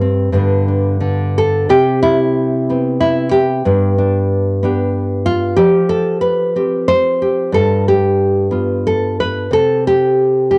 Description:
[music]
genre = folk, solo fingerstyle acoustic guitar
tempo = 92 BPM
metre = 3/4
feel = rubato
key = unclear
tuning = A4 = 440 Hz
[part]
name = nylon-string guitar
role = solo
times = 0.0-10.6 s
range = G2 to C5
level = -15 LUFS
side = equal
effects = cassette tape
[sound]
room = light reverb, small room ambience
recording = home recording on cassette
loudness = -15 LUFS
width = mono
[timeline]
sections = 0.0-1.7 A section; 1.7-10.6 B section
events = none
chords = 0.3 G; 1.7 Cmaj7; 3.7 G; 5.6 Fsus2; 7.5 G7; 9.5 N.C.

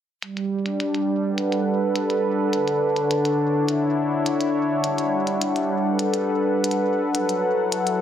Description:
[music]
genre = IDM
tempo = 104 BPM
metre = 4/4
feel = straight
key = G lydian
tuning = A4 = 440 Hz
[part]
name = warm analog pad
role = sustained chords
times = 0.2-8.0 s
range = D3 to F#5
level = -20 LUFS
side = equal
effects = chorus
[part]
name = electronic hi-hat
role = drums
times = 0.2-8.0 s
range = none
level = -30 LUFS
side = left 1 dB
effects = overdrive, low-pass filter on hats, small room reverb
[sound]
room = moderate echo chamber reverb, RT60 2.5 s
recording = heavily compressed radio sound, multiband compression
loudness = -20 LUFS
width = side -9 dB against mid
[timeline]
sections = 0.2-8.0 A section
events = none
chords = 0.2 Gmaj7; 2.5 Dmaj7; 4.8 Gmaj7; 7.1 F#m7

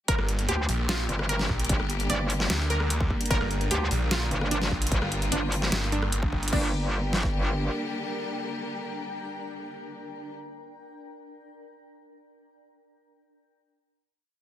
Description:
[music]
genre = heavy wobble dubstep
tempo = 149 BPM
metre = 4/4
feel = half-time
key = G minor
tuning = A4 = 443 Hz
[part]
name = wide unison pluck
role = melody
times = 0.1-10.3 s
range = D4 to D5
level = -33 LUFS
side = right 2 dB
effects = dub echo
[part]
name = clear studio string section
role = sustained chords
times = 0.1-10.3 s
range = D3 to G4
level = -35 LUFS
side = left 2 dB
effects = sidechain pumping
[part]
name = metallic wobble bass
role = bass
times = 0.1-7.7 s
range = G1 to D2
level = -28 LUFS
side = equal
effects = chorus, overdrive
[part]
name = dubstep drum kit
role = drums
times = 0.1-7.3 s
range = kick drum, snare drum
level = -28 LUFS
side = equal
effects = overdrive
[part]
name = dubstep drum kit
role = drums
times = 0.1-6.6 s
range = crash cymbal, hi-hat, rim click, snare drum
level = -30 LUFS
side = equal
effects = overdrive
[part]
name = granular cloud pad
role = texture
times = 1.8-10.5 s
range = D4 to Bb5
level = -38 LUFS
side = right 1 dB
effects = built-in reverb, sidechain pumping
[part]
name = snarling distorted saw bass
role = bass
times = 0.2-6.5 s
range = G1 to D2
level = -28 LUFS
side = equal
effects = distortion, overdrive
[sound]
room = digital ambience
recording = none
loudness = -25 LUFS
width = side -12 dB against mid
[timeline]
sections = 0.1-6.5 drop; 6.5-9.7 final chord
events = drop 0.1-6.5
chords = 0.1 Gm

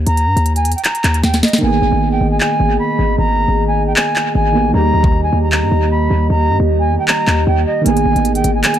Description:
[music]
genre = hip hop, trap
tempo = 154 BPM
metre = 4/4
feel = half-time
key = G# harmonic minor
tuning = A4 = 436 Hz
[part]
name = hard-hitting 808-style bass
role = bass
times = 0.0-8.6 s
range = G#1 to G2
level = -16 LUFS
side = equal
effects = none
[part]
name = reedy silver concert flute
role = melody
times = 0.1-8.8 s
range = D#5 to B5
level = -18 LUFS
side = equal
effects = low-pass filter, dub echo
[part]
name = trap drum kit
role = drums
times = 0.1-8.8 s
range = handclaps, hi-hat, kick drum, snare drum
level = -17 LUFS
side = equal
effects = overdrive, dub echo
[part]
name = warbly lo-fi synth keys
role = accompaniment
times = 1.6-8.8 s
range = D#3 to G#4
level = -19 LUFS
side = right 3 dB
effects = chorus, low-pass filter, dub echo
[part]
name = glass harmonica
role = sustained chords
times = 1.6-8.8 s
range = G4 to D#5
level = -22 LUFS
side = right 1 dB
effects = none
[sound]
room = digital ambience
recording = echo-heavy mix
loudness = -12 LUFS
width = side -10 dB against mid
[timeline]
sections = 0.0-8.8 A section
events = drum fill 1.2-1.6; hi-hats muted 1.6-7.9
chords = 0.0 D#5; 1.6 G#madd9; 4.7 D#; 7.9 G#madd9

